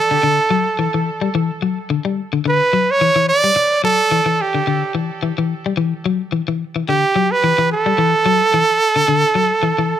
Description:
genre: afrobeat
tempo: 108 BPM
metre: 4/4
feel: swing 56% on 16ths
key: A mixolydian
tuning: A4 = 440 Hz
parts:
  - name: clear trumpet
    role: melody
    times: 0.0-10.0 s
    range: G4 to D5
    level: -15 LUFS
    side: right 3 dB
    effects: tape echo
  - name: electric guitar at the edge of break-up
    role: arpeggios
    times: 0.1-9.9 s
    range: D3 to G3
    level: -19 LUFS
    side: left 6 dB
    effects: none
room: moderate club reverb, RT60 0.6 s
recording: none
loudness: -14 LUFS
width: side -10 dB against mid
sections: 0.0-10.0 A section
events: none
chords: 0.0 Asus4

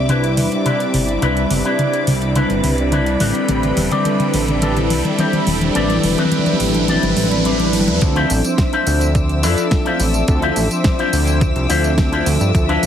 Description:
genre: nu-disco, nu disco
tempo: 106 BPM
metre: 4/4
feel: straight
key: D dorian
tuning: A4 = 440 Hz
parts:
  - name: mellow synth brass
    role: accompaniment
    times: 0.0-12.9 s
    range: F3 to B5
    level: -19 LUFS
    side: equal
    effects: chorus, slapback echo
  - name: rich studio string section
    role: sustained chords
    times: 0.0-12.9 s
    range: C4 to E6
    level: -27 LUFS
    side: equal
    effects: sidechain pumping
  - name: fat analog bass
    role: bass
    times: 0.0-12.9 s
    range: E1 to G2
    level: -20 LUFS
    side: equal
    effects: none
  - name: riser and swell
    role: sound effects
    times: 0.0-8.0 s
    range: none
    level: -26 LUFS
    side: right 2 dB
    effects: none
  - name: electric guitar with an envelope filter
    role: riff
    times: 0.1-12.8 s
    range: C4 to D5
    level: -22 LUFS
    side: left 3 dB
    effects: lush chorus, slapback echo
  - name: pop drum kit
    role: drums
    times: 0.1-12.9 s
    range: hi-hat, snare drum, tambourine, toms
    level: -21 LUFS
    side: equal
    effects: overdrive
  - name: electronic kick drum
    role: drums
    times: 8.0-12.7 s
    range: none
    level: -17 LUFS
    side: equal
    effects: none
room: moderate plate reverb, RT60 2.1 s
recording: heavily compressed radio sound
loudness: -14 LUFS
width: side -9 dB against mid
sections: 0.0-8.0 A section; 8.0-12.9 B section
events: build-up 0.0-8.0; drum fill 0.0-8.0; riser 0.0-8.0; swell 6.9-8.0; drop 8.0-12.9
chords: 0.0 Cmaj9; 3.2 Am9; 8.0 Dm9

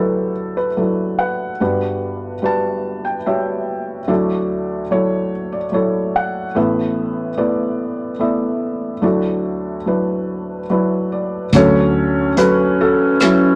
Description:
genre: acoustic folk-pop ballad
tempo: 72 BPM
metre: 3/4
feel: straight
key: D major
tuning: A4 = 441 Hz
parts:
  - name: felt-muted upright piano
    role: melody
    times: 0.0-13.6 s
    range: G1 to A5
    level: -19 LUFS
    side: equal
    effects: none
  - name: mellow clarinet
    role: second line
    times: 11.5-13.6 s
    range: C#4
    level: -21 LUFS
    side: equal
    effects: none
  - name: vintage muted fingered electric bass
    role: bass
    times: 11.5-13.0 s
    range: D2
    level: -22 LUFS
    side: equal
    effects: none
  - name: unplugged drum kit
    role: drums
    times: 11.5-13.4 s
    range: hi-hat, kick drum, rim click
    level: -22 LUFS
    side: equal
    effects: none
room: light reverb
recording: none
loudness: -18 LUFS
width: mono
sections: 0.0-11.5 A section; 11.5-13.6 B section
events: none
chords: 0.0 Dadd9; 1.6 Gmaj7; 4.1 Dadd9; 6.6 Asus2; 9.0 Dadd9; 11.5 Dmaj7

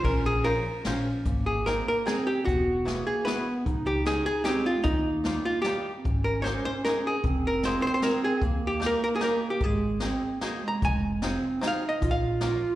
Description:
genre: musette waltz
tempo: 151 BPM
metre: 3/4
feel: straight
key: Ab major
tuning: A4 = 440 Hz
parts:
  - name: archtop guitar, miked and amplified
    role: melody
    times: 0.0-12.8 s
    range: Eb4 to Bb5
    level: -28 LUFS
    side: equal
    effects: plate reverb, slapback echo
  - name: breathy clarinet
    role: second line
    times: 0.0-12.8 s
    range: Ab3 to F4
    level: -31 LUFS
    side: right 3 dB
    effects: plate reverb, slapback echo
  - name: upright bass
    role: bass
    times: 0.0-12.5 s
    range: E1 to Eb2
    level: -32 LUFS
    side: left 1 dB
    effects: none
  - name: jazz brush drum kit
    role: drums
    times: 0.0-12.5 s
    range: hi-hat, kick drum, ride cymbal, snare drum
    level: -31 LUFS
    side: equal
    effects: none
  - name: bluegrass banjo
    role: accompaniment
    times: 0.4-12.6 s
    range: G3 to C5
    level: -36 LUFS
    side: left 3 dB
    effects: plate reverb, slapback echo
room: light reverb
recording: live gig heard through the venue's PA, recital hall reverb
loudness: -24 LUFS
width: side -14 dB against mid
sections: 0.0-1.3 A section; 1.3-10.8 B section; 10.8-12.8 C section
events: none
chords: 0.1 Bbmadd9; 1.3 Abadd9; 2.5 Eadd9; 3.7 Dbsus2; 4.8 Ebadd9; 6.1 Absus2; 7.3 Fm; 8.4 Eb; 9.6 Abadd9; 10.8 Fm7; 12.0 Bbm

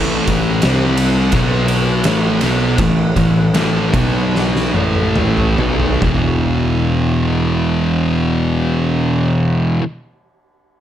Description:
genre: stoner and doom metal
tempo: 68-86 BPM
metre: 4/4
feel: straight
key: unclear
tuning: A4 = 439 Hz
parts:
  - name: fuzz guitar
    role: riff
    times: 0.0-9.8 s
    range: E2 to C4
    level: -15 LUFS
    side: equal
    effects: distortion
  - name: fuzz picked electric bass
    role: bass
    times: 0.0-9.8 s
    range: E1 to C2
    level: -19 LUFS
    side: equal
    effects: overdrive
  - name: oversized low-tuned drum kit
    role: drums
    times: 0.3-6.2 s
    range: kick drum, ride cymbal, snare drum, toms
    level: -19 LUFS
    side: equal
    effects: none
room: light reverb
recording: none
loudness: -13 LUFS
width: side -10 dB against mid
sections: 0.0-6.0 A section; 6.0-9.5 B section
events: slowing down 0.0-6.0; drum fill 4.3-6.0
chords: 0.0 A5; 0.6 C5; 1.3 B5; 2.1 A5; 3.9 B5; 4.7 A5; 6.0 E5

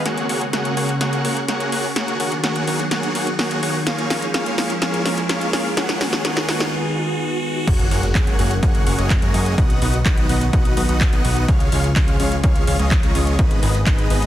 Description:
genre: EDM, festival progressive house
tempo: 126 BPM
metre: 4/4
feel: straight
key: F# major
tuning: A4 = 440 Hz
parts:
  - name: lush unison pad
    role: sustained chords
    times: 0.0-14.3 s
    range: C#3 to G#4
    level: -26 LUFS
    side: equal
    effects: chorus, vintage 12-bit sampler grit, sidechain pumping
  - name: big supersaw lead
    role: riff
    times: 0.0-14.2 s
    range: G#3 to A#5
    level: -23 LUFS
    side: equal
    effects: sidechain pumping, low-pass filter, dub echo
  - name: riser and impact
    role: sound effects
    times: 0.1-9.6 s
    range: none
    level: -28 LUFS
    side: equal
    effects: none
  - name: big-room dance drum kit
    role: drums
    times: 0.1-14.3 s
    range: crash cymbal, handclaps, hi-hat, snare drum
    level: -25 LUFS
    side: equal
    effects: none
  - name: fat analog bass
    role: bass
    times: 7.7-14.3 s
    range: F#1 to F#2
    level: -21 LUFS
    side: equal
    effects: sidechain pumping
  - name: electronic kick drum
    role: drums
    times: 7.7-14.0 s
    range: none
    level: -18 LUFS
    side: equal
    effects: overdrive
room: light reverb, digital ambience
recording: dense, heavily limited modern master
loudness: -16 LUFS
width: side -12 dB against mid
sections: 0.0-7.7 A section; 7.7-14.3 B section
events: build-up 0.0-7.7; filter sweep on analog synth pad 0.0-7.7; drum fill 0.1-6.7; riser 0.1-7.7; break 6.7-7.7; drop 7.7-14.3; impact 7.7-9.6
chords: 0.1 F#add9; 2.0 B; 3.9 C#; 5.8 G#m; 7.7 F#add9; 9.6 B; 11.5 C#; 13.4 G#m

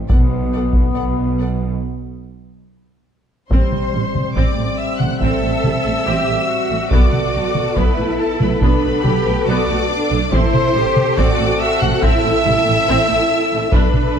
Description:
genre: cinematic, epic orchestral film score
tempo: 70 BPM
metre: 4/4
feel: straight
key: A dorian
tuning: A4 = 444 Hz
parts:
  - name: rich studio violin section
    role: melody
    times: 0.1-14.2 s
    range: F#5 to F#6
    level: -24 LUFS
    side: left 3 dB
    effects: none
  - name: rich symphonic violin section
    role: second line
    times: 0.1-14.2 s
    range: A4 to F#5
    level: -25 LUFS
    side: left 5 dB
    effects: none
  - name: warm symphonic viola section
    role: accompaniment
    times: 0.1-14.2 s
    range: F#3 to A4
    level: -24 LUFS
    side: right 1 dB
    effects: none
  - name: clear French horn section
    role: sustained chords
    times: 0.1-14.2 s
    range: G3 to A4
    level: -24 LUFS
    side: left 5 dB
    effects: none
  - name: rich symphonic cello section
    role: bass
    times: 0.1-14.2 s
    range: B2 to A4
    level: -23 LUFS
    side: right 3 dB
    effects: none
  - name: rich symphonic double bass section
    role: bass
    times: 0.1-14.2 s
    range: A1 to B1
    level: -22 LUFS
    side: right 4 dB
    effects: none
  - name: taiko ensemble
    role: drums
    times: 0.1-14.2 s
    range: none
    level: -18 LUFS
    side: equal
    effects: none
  - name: clear trumpet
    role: stabs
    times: 3.5-14.2 s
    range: A4 to F#5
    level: -23 LUFS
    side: right 3 dB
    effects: none
room: moderate scoring stage reverb, RT60 1.6 s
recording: dark, warm production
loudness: -14 LUFS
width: side -7 dB against mid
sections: 0.0-3.5 A section; 3.5-14.2 B section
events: break 1.8-3.5; drum fill 2.7-3.5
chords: 0.1 B7(no3); 1.8 N.C.; 3.5 Am7; 6.9 Bm7; 10.3 Am7

